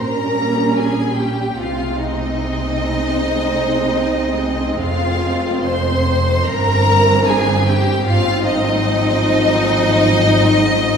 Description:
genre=classical, slow romantic movement for string orchestra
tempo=75 BPM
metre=4/4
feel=rubato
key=unclear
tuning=A4 = 440 Hz
part: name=rich studio violin section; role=melody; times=0.0-11.0 s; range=Eb5 to C6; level=-20 LUFS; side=left 2 dB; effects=none
part: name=warm studio violin section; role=second line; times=0.0-11.0 s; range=Eb4 to C5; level=-20 LUFS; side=left 1 dB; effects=none
part: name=warm studio viola section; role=accompaniment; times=0.0-11.0 s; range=E3 to Db4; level=-21 LUFS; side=right 3 dB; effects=none
part: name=rich studio cello section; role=bass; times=0.0-11.0 s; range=F2 to C3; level=-22 LUFS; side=equal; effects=none
part: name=rich studio double bass section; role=bass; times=0.0-11.0 s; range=F1 to C2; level=-22 LUFS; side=right 1 dB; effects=none
room=wet scoring stage reverb, RT60 1.5 s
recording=heard from further back in the room, small room ambience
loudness=-14 LUFS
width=side -6 dB against mid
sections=0.0-11.0 A section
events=none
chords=0.0 Bbm6; 1.6 Ab/C; 4.8 Fm; 6.5 C7/G; 8.1 Fm/Ab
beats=0.79 | 1.58 2.40 3.20 3.98 | 4.79 5.65 6.46 7.26 | 8.07 8.86 9.64 10.43

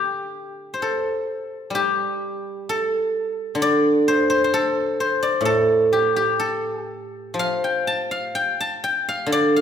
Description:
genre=chinese traditional, Chinese solo plucked strings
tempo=63 BPM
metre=2/4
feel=uneven beats, rubato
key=D yu mode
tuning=A4 = 444 Hz
part: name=guzheng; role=solo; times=0.0-9.6 s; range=A2 to A5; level=-19 LUFS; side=equal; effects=none
room=moderate scoring stage reverb, RT60 1.8 s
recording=recorded in a church or concert hall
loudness=-19 LUFS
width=side -8 dB against mid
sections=0.0-9.6 A section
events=none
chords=none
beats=0.78 | 1.72 2.65 | 3.58 4.49 | 5.42 6.37 | 7.35 8.34 | 9.29

